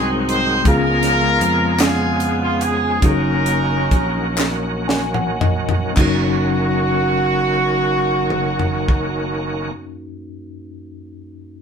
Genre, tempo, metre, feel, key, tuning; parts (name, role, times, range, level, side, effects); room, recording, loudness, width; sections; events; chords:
slow gospel; 34-54 BPM (dotted quarters); 6/8; straight; F# major; A4 = 440 Hz
clear horn section; melody; 0.0-9.7 s; B3 to B#4; -19 LUFS; right 1 dB
mellow tine electric piano; accompaniment; 0.0-11.6 s; F#2 to G#5; -24 LUFS; left 3 dB; medium stereo tremolo
bright tonewheel organ; sustained chords; 0.0-9.7 s; D#3 to G#4; -25 LUFS; right 2 dB; slow rotary speaker, chorus vibrato
fingered electric bass; bass; 0.0-9.7 s; F#1 to E#2; -23 LUFS; equal
tight funk drum kit; drums; 0.3-9.2 s; crash cymbal, hi-hat, kick drum, snare drum, toms; -19 LUFS; equal
group handclap; percussion; 1.8-6.5 s; -24 LUFS; left 4 dB
moderate studio reverb, RT60 0.6 s; band playing live in one room; -15 LUFS; side -6 dB against mid
0.0-6.0 A section; 6.0-9.5 B section
slowing down 0.7-6.0; drum fill 4.4-6.0; tine electric piano fill 4.4-6.0
0.0 G#7; 0.7 C#7; 3.0 F#6